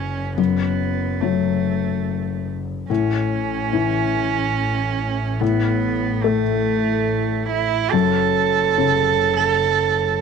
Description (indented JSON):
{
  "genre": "neoclassical piano and strings",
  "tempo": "71 BPM",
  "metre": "3/4",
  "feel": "rubato",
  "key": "A major",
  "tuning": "A4 = 440 Hz",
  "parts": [
    { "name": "warm cello", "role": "second line", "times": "0.0-10.2 s", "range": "A3 to A4", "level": "-21 LUFS", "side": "right 11 dB", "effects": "none" },
    { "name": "felt-muted upright piano", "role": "accompaniment", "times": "0.0-10.2 s", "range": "F#2 to A3", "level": "-22 LUFS", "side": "left 9 dB", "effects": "none" },
    { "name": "warm double bass", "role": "bass", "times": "0.0-10.2 s", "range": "F#1 to A1", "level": "-26 LUFS", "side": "equal", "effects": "none" }
  ],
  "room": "light reverb",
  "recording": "1960s-style stereo with parts hard left and right",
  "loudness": "-18 LUFS",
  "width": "side -6 dB against mid",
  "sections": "0.0-10.2 A section",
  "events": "none",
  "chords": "0.4 F#madd11; 2.9 A; 7.9 F#m",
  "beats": "| 0.38 1.23 2.06 | 2.89 3.72 4.56 | 5.41 6.24 7.07 | 7.93 8.77 9.61"
}